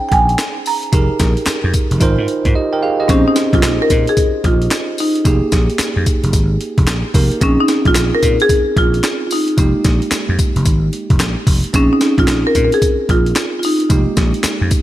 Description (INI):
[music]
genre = R&B, new jack swing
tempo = 111 BPM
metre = 4/4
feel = swing 64% on 16ths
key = Bb dorian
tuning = A4 = 440 Hz
[part]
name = marimba with medium mallets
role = melody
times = 0.0-14.7 s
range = C4 to Bb5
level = -16 LUFS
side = equal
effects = none
[part]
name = bell-like tine electric piano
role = accompaniment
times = 0.0-14.8 s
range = Ab3 to G5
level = -20 LUFS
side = right 3 dB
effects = none
[part]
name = vintage slap bass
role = bass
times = 0.1-14.7 s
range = F1 to Bb2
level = -17 LUFS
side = equal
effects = none
[part]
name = breakbeat sampler-style drum kit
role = drums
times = 0.1-14.8 s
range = handclaps, hi-hat, kick drum, snare drum, tambourine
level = -16 LUFS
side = equal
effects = none
[sound]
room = light reverb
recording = none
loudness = -12 LUFS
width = side -14 dB against mid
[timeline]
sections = 0.0-3.1 A section; 3.1-14.8 A section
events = silent gap 2.5-3.1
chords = 0.0 Bbm11; 0.9 Fm11; 2.0 Ab6; 3.1 Bbm11; 5.3 Fm11; 7.4 Bbm11; 9.6 Fm11; 11.7 Bbm11; 13.9 Fm11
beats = 0.39 | 0.93 1.47 2.01 2.55 | 3.09 3.63 4.17 4.71 | 5.25 5.79 6.33 6.87 | 7.41 7.96 8.49 9.04 | 9.58 10.12 10.66 11.20 | 11.74 12.28 12.82 13.36 | 13.90 14.44